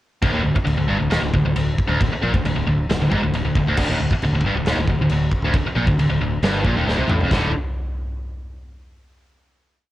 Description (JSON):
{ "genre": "heavy metal", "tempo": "136 BPM", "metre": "4/4", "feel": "straight", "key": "unclear", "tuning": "A4 = 440 Hz", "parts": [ { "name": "high-gain distorted guitar", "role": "riff", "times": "0.2-7.5 s", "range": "D2 to D3", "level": "-20 LUFS", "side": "equal", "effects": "distortion, cassette tape" }, { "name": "modern bright fingered electric bass", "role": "bass", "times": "0.2-7.5 s", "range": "D1 to C2", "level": "-23 LUFS", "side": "equal", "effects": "none" }, { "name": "big rock drum kit", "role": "drums", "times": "0.2-7.4 s", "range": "china cymbal, crash cymbal, kick drum, snare drum, toms", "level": "-23 LUFS", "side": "equal", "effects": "cassette tape" } ], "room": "small room ambience", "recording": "home recording on cassette", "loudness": "-17 LUFS", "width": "side -15 dB against mid", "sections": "0.2-7.3 riff; 7.3-9.1 final chord", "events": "drum fill 6.9-7.3", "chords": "0.2 N.C.; 7.3 D5", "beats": "| 0.23 0.67 1.11 1.56 | 2.00 2.44 2.89 3.33 | 3.77 4.21 4.65 5.10 | 5.54 5.98 6.42 6.87 | 7.31" }